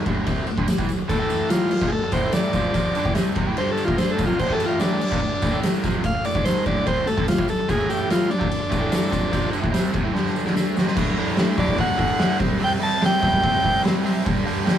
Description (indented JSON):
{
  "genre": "garage rock duo or trio",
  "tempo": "146 BPM",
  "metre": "4/4",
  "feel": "straight",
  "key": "unclear",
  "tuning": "A4 = 438 Hz",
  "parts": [
    { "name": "overdriven electric guitar", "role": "riff", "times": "0.0-14.8 s", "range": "D2 to D4", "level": "-25 LUFS", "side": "right 1 dB", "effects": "none" },
    { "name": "oversized low-tuned drum kit", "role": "drums", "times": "0.1-14.8 s", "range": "crash cymbal, hi-hat, kick drum, ride cymbal, snare drum", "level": "-22 LUFS", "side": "equal", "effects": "none" },
    { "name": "tambourine", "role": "percussion", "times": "0.7-10.9 s", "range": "none", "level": "-44 LUFS", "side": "right 7 dB", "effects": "none" },
    { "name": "overdriven combo organ", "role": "melody", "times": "1.1-13.8 s", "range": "D4 to A5", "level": "-23 LUFS", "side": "equal", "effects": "none" }
  ],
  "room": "light reverb",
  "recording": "rough rehearsal-room recording",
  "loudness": "-19 LUFS",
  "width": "side -10 dB against mid",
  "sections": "0.0-11.0 A section; 11.0-14.8 B section",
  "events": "transistor combo organ solo 0.0-11.0; drum fill 10.2-11.0",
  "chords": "0.0 D5; 1.2 A5; 1.7 D5; 4.5 A5; 5.0 D5; 7.8 A5; 8.3 D5; 11.0 D; 12.4 C5; 14.3 G5",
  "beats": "0.28 0.69 | 1.10 1.51 1.92 2.33 | 2.75 3.16 3.57 3.98 | 4.39 4.80 5.22 5.63 | 6.04 6.45 6.87 7.28 | 7.69 8.10 8.51 8.92 | 9.34 9.75 10.16 10.57 | 10.98 11.39 11.80 12.21 | 12.62 13.03 13.44 13.85 | 14.26 14.67"
}